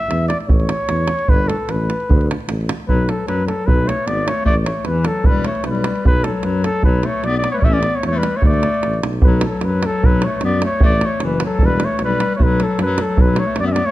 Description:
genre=balkan folk, Balkan brass band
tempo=152 BPM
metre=2/4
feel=straight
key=unclear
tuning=A4 = 440 Hz
part: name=dark trumpet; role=melody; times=0.0-13.9 s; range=A4 to E5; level=-21 LUFS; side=equal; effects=none
part: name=mellow tuba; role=bass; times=0.1-13.8 s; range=E1 to F#2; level=-21 LUFS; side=equal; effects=none
part: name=davul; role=percussion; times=0.1-13.9 s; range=none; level=-18 LUFS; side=right 1 dB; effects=none
part: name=bright clarinet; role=second line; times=2.9-13.9 s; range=E3 to C#4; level=-22 LUFS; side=left 4 dB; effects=none
room=light reverb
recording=close, detailed microphones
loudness=-15 LUFS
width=side -16 dB against mid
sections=0.0-2.9 A section; 2.9-9.2 B section; 9.2-13.9 B section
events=trumpet solo 0.0-2.9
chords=0.0 A; 1.3 G; 2.1 D5; 2.9 B5; 4.5 A5; 5.3 Em; 6.1 B5; 7.6 A5; 8.4 D5; 9.2 B5; 10.8 F#madd11; 11.6 Em; 12.4 B5

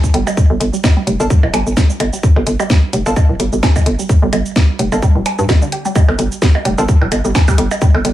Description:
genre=minimal techno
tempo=129 BPM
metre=4/4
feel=swing 56% on 16ths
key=G minor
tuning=A4 = 440 Hz
part: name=electronic kick drum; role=drums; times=0.0-7.9 s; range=none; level=-10 LUFS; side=equal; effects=none
part: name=garage drum kit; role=drums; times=0.0-8.1 s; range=cabasa, hi-hat, snare drum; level=-21 LUFS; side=right 1 dB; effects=none
part: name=resonant blip pluck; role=riff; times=0.1-8.1 s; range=D3 to G4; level=-22 LUFS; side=right 2 dB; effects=phaser, sidechain pumping, dub echo
part: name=hollow knocking FM bass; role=bass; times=0.1-8.1 s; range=D1 to G2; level=-16 LUFS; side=equal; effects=sidechain pumping
part: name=percussion blips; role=percussion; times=0.3-8.0 s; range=none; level=-23 LUFS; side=right 3 dB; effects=tape echo
part: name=wavetable chord stab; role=stabs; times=1.2-6.9 s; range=Bb3 to A4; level=-24 LUFS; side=right 1 dB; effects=tape echo
room=little or no reverb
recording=none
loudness=-11 LUFS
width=side -14 dB against mid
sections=0.0-8.1 A section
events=none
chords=none

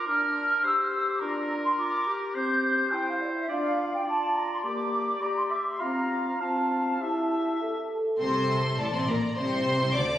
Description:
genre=quick classical-period movement for symphony orchestra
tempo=103 BPM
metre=4/4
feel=uneven beats, rubato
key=unclear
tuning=A4 = 441 Hz
part: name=clear oboe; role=second line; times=0.0-7.9 s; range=Bb4 to F5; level=-33 LUFS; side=equal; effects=none
part: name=mellow large flute ensemble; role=second line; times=0.0-7.9 s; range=D5 to G6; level=-27 LUFS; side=equal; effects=none
part: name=warm clarinet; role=second line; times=0.0-7.9 s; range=D4 to G4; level=-35 LUFS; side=left 2 dB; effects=none
part: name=dark French horn section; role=sustained chords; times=0.1-8.2 s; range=Bb3 to A4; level=-32 LUFS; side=equal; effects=none
part: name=warm chamber violin section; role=melody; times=8.2-10.2 s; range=A5 to D6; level=-30 LUFS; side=left 2 dB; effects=none
part: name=rich studio violin section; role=second line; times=8.2-10.2 s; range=A4 to D5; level=-32 LUFS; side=left 2 dB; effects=none
part: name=dark studio viola section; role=accompaniment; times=8.2-10.2 s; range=A4 to D5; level=-33 LUFS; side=equal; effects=none
part: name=dark chamber double bass section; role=bass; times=8.2-10.2 s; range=A1 to D2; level=-32 LUFS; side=right 1 dB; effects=none
part: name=rich chamber cello section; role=bass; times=8.2-10.2 s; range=A2 to D3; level=-28 LUFS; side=equal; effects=none
room=wet scoring stage reverb, RT60 2.0 s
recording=recorded on a phone in the room, studio reverb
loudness=-25 LUFS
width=side -12 dB against mid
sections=0.0-8.2 A section; 8.2-10.2 B section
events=none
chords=0.0 Bb/D; 2.3 C; 3.5 Dm; 4.6 Gm/Bb; 5.8 F/C; 7.0 Emadd11; 8.2 Amadd11

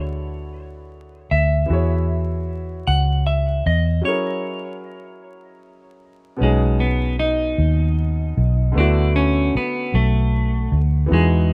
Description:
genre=slow six-eight R&B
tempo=51 BPM (dotted quarters)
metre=6/8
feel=straight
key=unclear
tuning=A4 = 442 Hz
part: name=clean electric guitar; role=melody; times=0.0-11.5 s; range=G#3 to F#5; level=-26 LUFS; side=equal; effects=subtle chorus
part: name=clear baby grand piano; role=accompaniment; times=0.0-11.5 s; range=B2 to C#5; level=-29 LUFS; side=equal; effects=none
part: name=vintage muted fingered electric bass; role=bass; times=0.0-11.5 s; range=B1 to E2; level=-21 LUFS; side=equal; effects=none
room=light reverb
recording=rough home demo mix, vinyl crackle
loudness=-19 LUFS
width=mono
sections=0.0-6.4 A section; 6.4-11.5 B section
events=break 4.0-6.4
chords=0.0 Dmaj9#11; 1.7 E69; 4.0 F#9; 6.4 B69; 8.7 D6

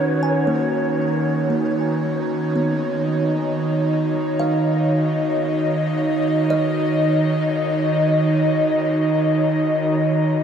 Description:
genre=ambient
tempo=free time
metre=none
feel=none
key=unclear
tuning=A4 = 440 Hz
part: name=breathy long shakuhachi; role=melody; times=0.0-0.5 s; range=Db5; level=-28 LUFS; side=equal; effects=tape echo
part: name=airy breathy pad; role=sustained chords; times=0.0-10.4 s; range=Eb3 to D#5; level=-18 LUFS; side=right 1 dB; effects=chorus
part: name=kalimba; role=arpeggios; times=0.0-10.2 s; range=Bb3 to Ab5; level=-27 LUFS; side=right 1 dB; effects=tape echo
room=wet huge ambient reverb, RT60 8.5 s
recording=in a vast, echoing space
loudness=-17 LUFS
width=side -8 dB against mid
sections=0.0-10.4 A section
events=fade-in on analog synth pad 0.0-10.4; fade-in on kalimba 0.0-10.4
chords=0.0 Ebm7; 2.1 Badd9/D#

